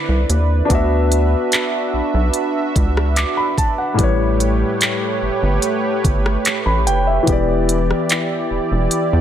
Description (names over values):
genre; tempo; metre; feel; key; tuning
contemporary R&B; 73 BPM; 4/4; straight; D major; A4 = 441 Hz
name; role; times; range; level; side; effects
warm concert grand piano; accompaniment; 0.0-9.2 s; A2 to D6; -20 LUFS; left 2 dB; none
warm analog pad; sustained chords; 0.0-9.2 s; D3 to E5; -21 LUFS; right 2 dB; chorus, sidechain pumping
rubbery square bass; bass; 0.1-9.2 s; E1 to E2; -18 LUFS; equal; none
smooth R&B drum kit; drums; 0.3-9.1 s; handclaps, hi-hat, kick drum, rim click; -20 LUFS; equal; none
room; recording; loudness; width
light reverb; none; -15 LUFS; side -10 dB against mid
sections
0.0-9.2 A section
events
grand piano fill 8.9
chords
0.0 Cmaj9; 0.7 D69; 4.0 A9; 7.3 Em7